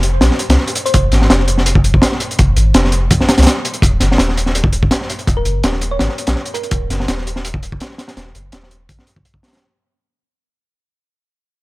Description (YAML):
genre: drum and bass, jungle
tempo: 166 BPM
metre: 4/4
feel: swing 53% on 16ths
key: unclear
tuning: A4 = 445 Hz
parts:
  - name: soft dub sub bass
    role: bass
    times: 0.0-9.2 s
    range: Eb1 to C2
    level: -16 LUFS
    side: equal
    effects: none
  - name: crunchy breakbeat drum kit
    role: drums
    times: 0.0-9.6 s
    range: hi-hat, kick drum, snare drum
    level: -14 LUFS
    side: equal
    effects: none
  - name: thumb-piano-like synth pluck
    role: melody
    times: 0.9-1.0, 5.4-6.9 s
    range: Bb4 to Db5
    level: -25 LUFS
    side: equal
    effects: chorus, dub echo
room: small room ambience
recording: none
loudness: -12 LUFS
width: side -21 dB against mid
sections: 0.0-9.6 A section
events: drop 0.0-9.6; fade-out 3.8-9.6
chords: none